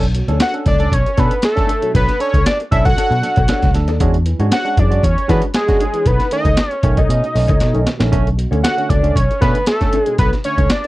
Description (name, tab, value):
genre	funk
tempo	117 BPM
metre	4/4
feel	straight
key	unclear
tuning	A4 = 440 Hz
part	mellow electric guitar	accompaniment	0.0-10.9 s	D4 to D#5	-26 LUFS	left 4 dB	ensemble chorus
part	barky tine electric piano	stabs	0.0-10.6 s	B2 to A4	-24 LUFS	right 5 dB	none
part	vintage muted picked electric bass	bass	0.0-10.7 s	A#1 to E3	-16 LUFS	equal	none
part	breakbeat sampler-style drum kit	drums	0.0-10.9 s	hi-hat, kick drum, snare drum	-17 LUFS	equal	none
part	fat analog lead	melody	0.4-10.9 s	G#4 to F#5	-18 LUFS	equal	chorus
room	digital ambience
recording	dry, close 1970s-style studio recording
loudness	-13 LUFS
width	side -18 dB against mid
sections	0.0-10.9 A section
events	drum fill 7.6-8.1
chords	0.0 Bm9; 4.0 E13; 6.1 B9; 8.1 Bm9